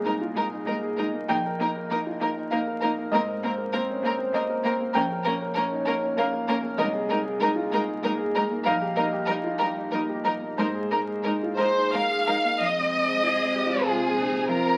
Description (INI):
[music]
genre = neoclassical piano and strings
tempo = 97 BPM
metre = 3/4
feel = rubato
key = unclear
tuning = A4 = 440 Hz
[part]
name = rich cello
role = second line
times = 0.0-14.8 s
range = G3 to Ab4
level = -36 LUFS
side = equal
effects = none
[part]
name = clear concert grand piano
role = accompaniment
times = 0.0-14.8 s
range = Bb1 to G5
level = -31 LUFS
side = equal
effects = none
[part]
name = dark analog pad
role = sustained chords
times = 0.0-14.8 s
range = Ab3 to Eb5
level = -34 LUFS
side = equal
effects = chorus
[part]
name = rich chamber violin section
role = melody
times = 0.1-14.8 s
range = Ab4 to F5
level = -29 LUFS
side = equal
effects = none
[part]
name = rich viola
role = accompaniment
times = 0.1-14.8 s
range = Ab3 to Eb4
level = -37 LUFS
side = equal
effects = none
[sound]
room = moderate large studio reverb, RT60 0.9 s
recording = very old 78 rpm record, vinyl crackle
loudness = -26 LUFS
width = mono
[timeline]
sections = 0.0-12.6 A section; 12.6-14.8 B section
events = none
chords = 0.0 Abadd9/C; 1.3 Eb/Bb; 3.1 Abadd9; 5.0 Bbm; 6.8 Abadd9/C; 8.7 Eb/Bb; 10.6 Abadd9; 12.6 Fm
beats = 0.06 0.67 | 1.29 1.90 2.51 | 3.12 3.73 4.34 | 4.95 5.57 6.18 | 6.80 7.42 8.05 | 8.67 9.29 9.93 | 10.59 11.26 11.94 | 12.61 13.25 13.87 | 14.48